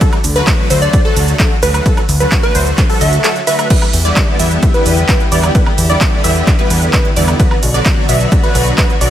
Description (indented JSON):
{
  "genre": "EDM, festival progressive house",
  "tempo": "130 BPM",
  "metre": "4/4",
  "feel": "straight",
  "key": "E minor",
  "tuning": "A4 = 437 Hz",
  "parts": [
    { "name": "wide unison pluck", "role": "arpeggios", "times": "0.0-9.1 s", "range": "A4 to E5", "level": "-20 LUFS", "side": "right 1 dB", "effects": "sidechain pumping, digital delay" },
    { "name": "supersaw chords", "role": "riff", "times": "0.0-9.1 s", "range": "D3 to E5", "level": "-18 LUFS", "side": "equal", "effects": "ensemble chorus, sidechain pumping, digital delay" },
    { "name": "big-room dance drum kit", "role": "drums", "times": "0.0-9.1 s", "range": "cabasa, crash cymbal, handclaps, hi-hat, ride cymbal, woodblock", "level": "-18 LUFS", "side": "right 2 dB", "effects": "overdrive" },
    { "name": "electronic kick drum", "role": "drums", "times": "0.0-8.9 s", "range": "none", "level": "-13 LUFS", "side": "equal", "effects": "overdrive" },
    { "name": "fat analog bass", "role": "bass", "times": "0.2-9.1 s", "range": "B1 to E2", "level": "-14 LUFS", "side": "equal", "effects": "sidechain pumping" },
    { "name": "plucky unison lead", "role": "melody", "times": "0.8-3.7 s", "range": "B4 to E5", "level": "-19 LUFS", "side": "right 1 dB", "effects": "digital delay" },
    { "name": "dark studio string section", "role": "sustained chords", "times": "3.7-9.1 s", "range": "D3 to D5", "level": "-23 LUFS", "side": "left 3 dB", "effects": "sidechain pumping" }
  ],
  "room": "little or no reverb",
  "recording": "none",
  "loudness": "-10 LUFS",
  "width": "side -11 dB against mid",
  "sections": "0.0-3.7 A section; 3.7-9.1 A section",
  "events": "drop 0.0-3.7, 3.7-9.1; kick drops out 3.2-3.7",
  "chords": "0.0 D; 3.7 Em7; 7.4 Bm"
}